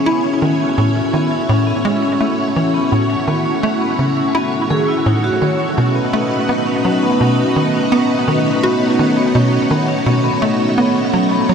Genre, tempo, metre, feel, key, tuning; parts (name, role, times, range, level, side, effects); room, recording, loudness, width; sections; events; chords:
ambient, sequencer-driven space music; 84 BPM; 4/4; straight; A4 = 442 Hz
string machine, full ensemble; sustained chords; 0.0-11.5 s; A3 to C#5; -17 LUFS; right 1 dB; ensemble chorus
vibraphone with medium hard mallets; arpeggios; 0.0-11.5 s; B3 to C#5; -19 LUFS; left 4 dB; auto-pan, analog delay
tight sequencer bass; riff; 0.1-11.5 s; A2 to F#4; -18 LUFS; right 1 dB; analog chorus, analog delay
wet huge ambient reverb, RT60 8.6 s; -13 LUFS; side -6 dB against mid
0.0-11.5 A section
0.1 A6; 5.8 B7